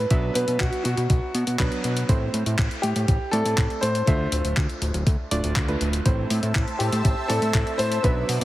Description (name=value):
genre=italo disco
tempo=121 BPM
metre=4/4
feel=straight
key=A minor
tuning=A4 = 439 Hz
part: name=warm grand piano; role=melody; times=0.0-8.4 s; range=F#4 to C5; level=-27 LUFS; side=equal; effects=tape echo
part: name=warm electric grand piano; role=stabs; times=0.0-8.4 s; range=F#3 to E5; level=-30 LUFS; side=right 2 dB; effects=none
part: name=fat analog bass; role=bass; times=0.0-8.4 s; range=D1 to B2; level=-25 LUFS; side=equal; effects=none
part: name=clean 12-bit digital drum machine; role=drums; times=0.1-8.4 s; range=handclaps, hi-hat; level=-30 LUFS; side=left 1 dB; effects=none
part: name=electronic kick drum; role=drums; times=0.1-8.1 s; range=none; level=-23 LUFS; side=equal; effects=none
part: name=lush unison pad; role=sustained chords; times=6.2-8.4 s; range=B4 to E6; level=-30 LUFS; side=equal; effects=chorus, phaser
room=light reverb, digital ambience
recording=heavily compressed radio sound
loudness=-20 LUFS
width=side -15 dB against mid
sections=0.0-8.4 A section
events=none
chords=0.1 Bm; 2.1 Am; 4.1 Dm7; 6.1 Am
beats=| 0.11 0.60 1.10 1.59 | 2.09 2.59 3.08 3.58 | 4.07 4.57 5.07 5.56 | 6.06 6.55 7.05 7.54 | 8.04